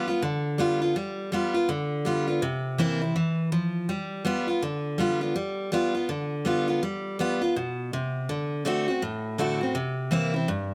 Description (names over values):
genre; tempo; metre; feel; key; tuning
rock; 164 BPM; 4/4; swing 62% on 8ths; G mixolydian; A4 = 438 Hz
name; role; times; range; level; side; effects
picked steel-string acoustic guitar; solo; 0.0-10.7 s; G2 to F#4; -27 LUFS; equal; none
room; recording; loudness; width
light reverb; none; -27 LUFS; mono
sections
0.0-10.7 A section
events
none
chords
0.0 G7; 2.4 C7; 3.9 G7; 8.3 D7; 9.8 C7